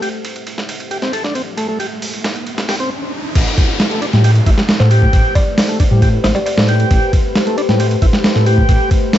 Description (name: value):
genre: breakbeat, breaks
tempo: 135 BPM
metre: 4/4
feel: straight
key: A minor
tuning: A4 = 438 Hz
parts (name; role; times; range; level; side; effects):
- deep dark ambient pad; sustained chords; 0.0-9.2 s; A3 to E5; -24 LUFS; left 3 dB; chorus, built-in reverb, sidechain pumping
- tonewheel organ; riff; 0.0-8.9 s; G3 to A4; -21 LUFS; equal; slow rotary speaker, low-pass filter, ping-pong delay
- dusty soul sampler-style drum kit; drums; 0.0-9.2 s; crash cymbal, hi-hat, kick drum, ride cymbal, snare drum; -15 LUFS; equal; overdrive, high-pass filter on cymbals, small room reverb, high-pass filter on snare, high-pass filter on hats, high-pass filter on kick
- riser and downlifter; sound effects; 1.2-6.9 s; none; -26 LUFS; equal; none
- dark detuned saw bass; bass; 3.4-8.8 s; A1 to A2; -13 LUFS; equal; none
- kalimba; melody; 4.8-6.5 s; C5 to D5; -23 LUFS; left 1 dB; telephone sound, vintage 12-bit sampler grit, ping-pong delay
room: little or no reverb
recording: vinyl crackle, nothing above 7.9 kHz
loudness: -12 LUFS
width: side -12 dB against mid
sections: 0.0-3.4 A section; 3.4-9.2 B section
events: riser 1.2-3.4; stop 2.9-3.4; drop 3.4-9.2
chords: 0.0 Am7; 3.4 Am9